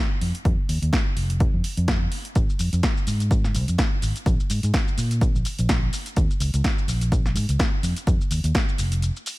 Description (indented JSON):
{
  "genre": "filtered disco house",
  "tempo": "126 BPM",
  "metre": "4/4",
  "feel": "swing 56% on 16ths",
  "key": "unclear",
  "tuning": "A4 = 440 Hz",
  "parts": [
    { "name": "fingered electric bass", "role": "bass", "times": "0.2-9.1 s", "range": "F1 to Bb2", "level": "-23 LUFS", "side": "equal", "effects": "sidechain pumping, low-pass filter" },
    { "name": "punchy analog drum machine", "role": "drums", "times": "0.2-9.4 s", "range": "hi-hat, shaker, snare drum", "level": "-29 LUFS", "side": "equal", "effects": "sidechain pumping on hats, sidechain pumping on perc" },
    { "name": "electronic kick drum", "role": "drums", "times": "0.5-8.7 s", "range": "none", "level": "-22 LUFS", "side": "equal", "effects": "none" }
  ],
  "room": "digital ambience",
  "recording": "none",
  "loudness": "-20 LUFS",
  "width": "side -20 dB against mid",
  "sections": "0.0-9.4 A section",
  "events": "break 9.0-9.4",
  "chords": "none"
}